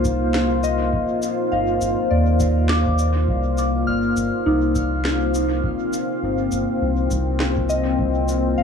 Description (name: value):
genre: ambient dub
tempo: 102 BPM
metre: 4/4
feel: swing 56% on 16ths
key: C minor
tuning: A4 = 442 Hz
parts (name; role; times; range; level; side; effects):
- deep dark ambient pad; sustained chords; 0.0-8.6 s; Bb3 to F5; -22 LUFS; left 2 dB; chorus, built-in reverb
- soft synth bell; arpeggios; 0.0-8.6 s; Eb4 to F6; -26 LUFS; left 2 dB; chorus, dub echo
- soft dub sub bass; bass; 0.0-8.6 s; G1 to Eb2; -22 LUFS; equal; none
- electronic kick drum; drums; 0.0-8.1 s; none; -28 LUFS; equal; none
- electronic shaker and snare drum; drums; 0.0-8.4 s; none; -28 LUFS; equal; dub echo
room: moderate spring reverb, RT60 2.8 s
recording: echo-heavy mix, small room ambience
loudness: -18 LUFS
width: side -6 dB against mid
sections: 0.0-8.6 A section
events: none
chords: 0.0 Cm11